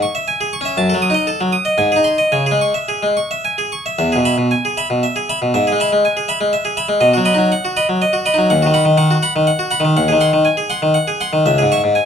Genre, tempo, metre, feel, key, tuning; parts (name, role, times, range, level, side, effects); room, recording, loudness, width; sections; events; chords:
classical, baroque-style suite movement for harpsichord; 106-125 BPM; 3/4; rubato; C# minor, E major from 4.0 s; A4 = 439 Hz
harpsichord; solo; 0.0-12.1 s; C#2 to D#6; -13 LUFS; equal
light reverb; close, detailed microphones; -13 LUFS; side -8 dB against mid
0.0-4.0 A section; 4.0-12.1 A section
0.0 C#m; 0.8 D#dim/F#; 1.8 G#; 2.3 C#m; 4.0 E; 5.5 E/G#; 7.0 B; 8.5 B/D#; 10.0 G#7/D#; 11.5 C#m